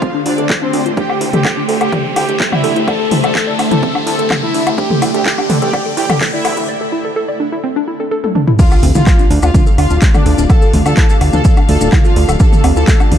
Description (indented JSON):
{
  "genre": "melodic techno",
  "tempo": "126 BPM",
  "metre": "4/4",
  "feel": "straight",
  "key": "D minor",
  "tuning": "A4 = 440 Hz",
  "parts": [
    { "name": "analog synth brass", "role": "melody", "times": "0.0-13.0 s", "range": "C4 to A4", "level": "-20 LUFS", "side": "equal", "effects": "chorus, sidechain pumping, ping-pong delay" },
    { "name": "clear chamber violin section", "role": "second line", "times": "0.0-13.0 s", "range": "C5 to A5", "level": "-26 LUFS", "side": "right 1 dB", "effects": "sidechain pumping, digital delay" },
    { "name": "deep dark ambient pad", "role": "sustained chords", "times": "0.0-13.2 s", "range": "A3 to D5", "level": "-23 LUFS", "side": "equal", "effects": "chorus, built-in reverb, sidechain pumping" },
    { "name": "warbly dusty pluck", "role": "arpeggios", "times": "0.0-13.2 s", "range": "A3 to D5", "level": "-20 LUFS", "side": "equal", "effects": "chorus, sidechain pumping, digital delay" },
    { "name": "swarming drone", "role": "drone", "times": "0.0-6.7 s", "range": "D3 to A3", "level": "-30 LUFS", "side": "equal", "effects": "built-in reverb, sidechain pumping" },
    { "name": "electronic kick drum", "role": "drums", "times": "0.0-13.0 s", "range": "none", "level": "-11 LUFS", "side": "equal", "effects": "overdrive, high-pass filter on kick, high-pass filter on room" },
    { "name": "house drum kit", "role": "drums", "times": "0.0-13.2 s", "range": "crash cymbal, handclaps, hi-hat, toms, woodblock", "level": "-17 LUFS", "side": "left 1 dB", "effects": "overdrive, sidechain pumping on hats, sidechain pumping on perc, sidechain pumping on toms, sidechain pumping on cymbals" },
    { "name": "riser and impact", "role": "sound effects", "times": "0.0-10.5 s", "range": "none", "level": "-24 LUFS", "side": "equal", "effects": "none" },
    { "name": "rich studio string section", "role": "texture", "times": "0.0-13.2 s", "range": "D4 to F5", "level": "-26 LUFS", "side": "left 2 dB", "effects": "sidechain pumping" },
    { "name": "fat analog bass", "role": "bass", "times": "0.3-13.2 s", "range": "D1 to D2", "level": "-16 LUFS", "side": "equal", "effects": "sidechain pumping, high-pass filter" },
    { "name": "dusty soul sampler-style drum kit", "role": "drums", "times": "8.6-13.2 s", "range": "hi-hat, snare drum", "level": "-34 LUFS", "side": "right 1 dB", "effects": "none" },
    { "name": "maracas", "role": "percussion", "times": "8.6-13.1 s", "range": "none", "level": "-30 LUFS", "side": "left 5 dB", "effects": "none" }
  ],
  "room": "light reverb, digital ambience",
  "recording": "dark, warm production",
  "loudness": "-10 LUFS",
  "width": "side -9 dB against mid",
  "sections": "0.0-8.6 A section; 8.6-13.2 B section",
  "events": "build-up 0.0-8.6; riser 0.0-6.7; break 6.7-8.6; drum fill 8.2-8.6; drop 8.6-13.2; impact 8.6-10.5",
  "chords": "0.0 Dm; 1.0 Am7/D; 8.6 Dm"
}